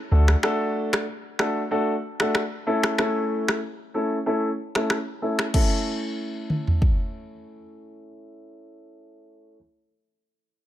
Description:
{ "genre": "afrobeats", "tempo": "94 BPM", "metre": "4/4", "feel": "swing 55% on 16ths", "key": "A major", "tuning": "A4 = 440 Hz", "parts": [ { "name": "warm grand piano", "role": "accompaniment", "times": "0.1-9.6 s", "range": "A3 to A4", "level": "-26 LUFS", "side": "left 1 dB", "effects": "low-pass filter" }, { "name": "afro-pop drum kit", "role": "drums", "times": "0.3-7.0 s", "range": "crash cymbal, finger snaps, kick drum, rim click, toms", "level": "-24 LUFS", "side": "equal", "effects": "none" } ], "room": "little or no reverb", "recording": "none", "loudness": "-22 LUFS", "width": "side -12 dB against mid", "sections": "0.0-5.5 A section; 5.5-8.1 B section", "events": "filter sweep on grand piano 0.0-5.5", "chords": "0.1 D; 2.7 A" }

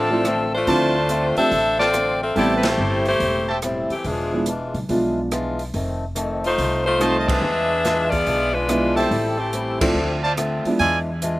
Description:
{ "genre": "jazz, big band swing", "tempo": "142 BPM", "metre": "4/4", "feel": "swing 66% on 8ths", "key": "A minor", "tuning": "A4 = 440 Hz", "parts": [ { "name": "edgy saxophone section", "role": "melody", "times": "0.0-10.2 s", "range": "E3 to E5", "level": "-20 LUFS", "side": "left 1 dB", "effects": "slapback echo" }, { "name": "picked swing-style acoustic guitar", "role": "accompaniment", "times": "0.0-11.4 s", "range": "F2 to F4", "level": "-27 LUFS", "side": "left 1 dB", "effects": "slapback echo" }, { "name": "clear trumpet section", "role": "stabs", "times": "0.0-3.6, 7.0-11.0 s", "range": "F4 to A5", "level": "-23 LUFS", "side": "right 1 dB", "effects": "slapback echo" }, { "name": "upright bass", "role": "bass", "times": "0.0-11.4 s", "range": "E1 to E2", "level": "-28 LUFS", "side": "equal", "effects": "none" }, { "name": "warm upright piano", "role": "accompaniment", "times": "0.1-10.8 s", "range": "F3 to G4", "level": "-23 LUFS", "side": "right 1 dB", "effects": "none" }, { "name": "swinging big-band drum kit", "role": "drums", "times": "0.2-11.3 s", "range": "crash cymbal, hi-hat, kick drum, ride cymbal, rim click, snare drum", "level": "-29 LUFS", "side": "right 1 dB", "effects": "none" } ], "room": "little or no reverb", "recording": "recorded outdoors, with no room sound", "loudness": "-18 LUFS", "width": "side -18 dB against mid", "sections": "0.0-11.4 A section", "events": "band accent 2.6, 7.2, 9.7", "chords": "0.0 Dm7; 2.4 Am7; 4.0 E7b9; 5.7 F7; 7.4 E7b9; 9.1 Am7; 10.0 Dm7; 10.8 E7b9" }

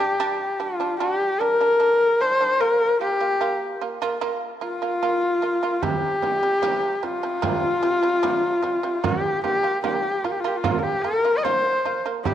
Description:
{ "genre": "mongolian traditional, Mongolian folk", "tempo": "75 BPM", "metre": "4/4", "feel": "straight", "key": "unclear", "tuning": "A4 = 441 Hz", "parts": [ { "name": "rich horsehead fiddle", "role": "melody", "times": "0.0-12.3 s", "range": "F4 to Eb5", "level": "-21 LUFS", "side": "left 2 dB", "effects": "cassette tape" }, { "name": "shamisen", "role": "arpeggios", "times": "0.0-12.3 s", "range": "C3 to F4", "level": "-28 LUFS", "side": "right 7 dB", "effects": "none" }, { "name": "frame drum", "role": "percussion", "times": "5.8-12.3 s", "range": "none", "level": "-28 LUFS", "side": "right 7 dB", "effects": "none" } ], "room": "moderate lush hall reverb, RT60 2.4 s", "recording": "home recording on cassette, lossy compression artefacts", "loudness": "-20 LUFS", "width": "side -10 dB against mid", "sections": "0.0-12.3 A section", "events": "none", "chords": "0.0 G5; 2.6 Bb5; 5.8 C5; 9.0 Bb5" }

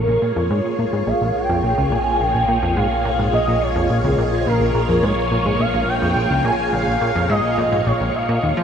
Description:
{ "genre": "ambient", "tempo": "106 BPM", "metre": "4/4", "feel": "straight", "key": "unclear", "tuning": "A4 = 440 Hz", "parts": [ { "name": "expressive synth lead", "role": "melody", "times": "0.0-8.6 s", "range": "Bb4 to Ab5", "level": "-20 LUFS", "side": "equal", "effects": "ensemble chorus, tape echo" }, { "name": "phased string machine", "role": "sustained chords", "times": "0.0-8.6 s", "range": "Bb3 to Db5", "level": "-23 LUFS", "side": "equal", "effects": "ensemble chorus, phaser" }, { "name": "plucky analog bass", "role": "riff", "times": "0.0-8.6 s", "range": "Bb1 to F3", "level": "-21 LUFS", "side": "equal", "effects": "tape echo" }, { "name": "analog drone", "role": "bass", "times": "1.4-8.6 s", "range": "Bb1", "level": "-26 LUFS", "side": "equal", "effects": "chorus" }, { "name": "wind-like tuned noise texture", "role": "texture", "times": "2.3-8.6 s", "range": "none", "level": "barely audible", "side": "none", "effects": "none" } ], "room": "wet huge ambient reverb, RT60 7.1 s", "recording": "none", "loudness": "-16 LUFS", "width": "side -8 dB against mid", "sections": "0.0-8.6 A section", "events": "none", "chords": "0.0 Bbm7" }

